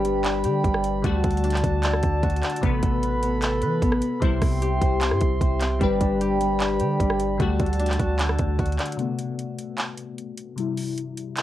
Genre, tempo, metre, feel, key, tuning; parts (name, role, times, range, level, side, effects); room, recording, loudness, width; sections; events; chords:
hip hop, trap; 151 BPM; 4/4; half-time; A dorian; A4 = 440 Hz
glassy digital keys; accompaniment; 0.0-11.4 s; C3 to B4; -30 LUFS; left 6 dB; chorus, low-pass filter, cassette tape
warm brass ensemble; sustained chords; 0.0-9.0 s; F#4 to C6; -29 LUFS; right 2 dB; cassette tape
Celtic harp; arpeggios; 0.0-11.0 s; D3 to C5; -27 LUFS; left 1 dB; low-pass filter, cassette tape, tape echo
long sustained 808-style bass; bass; 0.0-8.8 s; G1 to E3; -26 LUFS; right 1 dB
trap drum kit; drums; 0.0-11.4 s; handclaps, hi-hat, kick drum, rim click; -26 LUFS; right 1 dB; cassette tape
light reverb; home recording on cassette; -21 LUFS; side -13 dB against mid
0.0-9.0 A section; 9.0-11.4 B section
break 9.0-11.4; filter sweep 9.0-11.4
0.0 G; 1.0 D; 2.6 Amadd9; 4.2 C; 5.8 G; 7.4 D; 9.0 Amadd9; 10.6 C